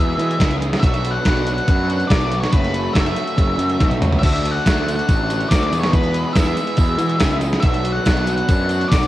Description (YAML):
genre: indie rock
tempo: 141 BPM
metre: 4/4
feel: straight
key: unclear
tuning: A4 = 440 Hz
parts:
  - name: octave-fuzz lead guitar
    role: melody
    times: 0.0-9.1 s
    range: B4 to F#5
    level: -24 LUFS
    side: left 1 dB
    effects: distortion, cassette tape
  - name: raw garage guitar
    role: riff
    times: 0.0-9.1 s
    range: E2 to G#4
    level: -24 LUFS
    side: right 1 dB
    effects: overdrive
  - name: fuzz picked electric bass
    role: bass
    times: 0.0-9.1 s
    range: F#1 to E3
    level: -21 LUFS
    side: equal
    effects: overdrive
  - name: gated 80s digital drum machine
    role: drums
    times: 0.2-9.1 s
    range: crash cymbal, hi-hat, kick drum, snare drum, splash cymbal, toms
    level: -18 LUFS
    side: equal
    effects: gated reverb, gated reverb snare, cassette tape
  - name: tambourine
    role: percussion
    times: 4.2-9.0 s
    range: none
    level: -41 LUFS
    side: right 6 dB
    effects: none
room: little or no reverb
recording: home recording on cassette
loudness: -15 LUFS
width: side -15 dB against mid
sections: 0.0-9.1 A section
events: drum fill 3.8-4.2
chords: 0.0 E; 0.8 Bm; 2.5 F#m7; 4.2 D; 5.7 E; 7.6 Bm